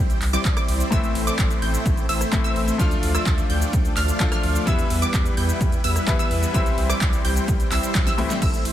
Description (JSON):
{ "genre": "EDM, festival progressive house", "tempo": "128 BPM", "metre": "4/4", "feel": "straight", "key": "unclear", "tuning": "A4 = 441 Hz", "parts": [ { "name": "wide unison pluck", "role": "arpeggios", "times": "0.0-8.7 s", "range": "D6 to G6", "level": "-29 LUFS", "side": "right 2 dB", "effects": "sidechain pumping, dub echo" }, { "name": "dense compressed supersaw", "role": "riff", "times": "0.0-8.7 s", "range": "G3 to G5", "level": "-27 LUFS", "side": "right 1 dB", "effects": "sidechain pumping, dub echo" }, { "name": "saturated sub bass", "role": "bass", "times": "0.0-8.7 s", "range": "A1 to E2", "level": "-26 LUFS", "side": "equal", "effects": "sidechain pumping" }, { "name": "big-room dance drum kit", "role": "drums", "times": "0.1-8.7 s", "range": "crash cymbal, handclaps, hi-hat, rim click, shaker, snare drum", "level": "-29 LUFS", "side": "equal", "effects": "overdrive, studio ambience" }, { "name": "electronic kick drum", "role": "drums", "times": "0.5-8.5 s", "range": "none", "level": "-22 LUFS", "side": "equal", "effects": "overdrive, studio ambience" }, { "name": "bright concert grand piano", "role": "accompaniment", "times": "0.9-8.4 s", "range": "A2 to F4", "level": "-27 LUFS", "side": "left 5 dB", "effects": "sidechain pumping, dub echo" } ], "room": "little or no reverb", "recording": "none", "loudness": "-18 LUFS", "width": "side -12 dB against mid", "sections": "0.0-8.4 A section", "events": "drop 0.0-8.4; drum fill 8.0-8.4", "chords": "0.0 C; 0.9 Am; 2.8 Dm; 4.7 Em; 6.5 C" }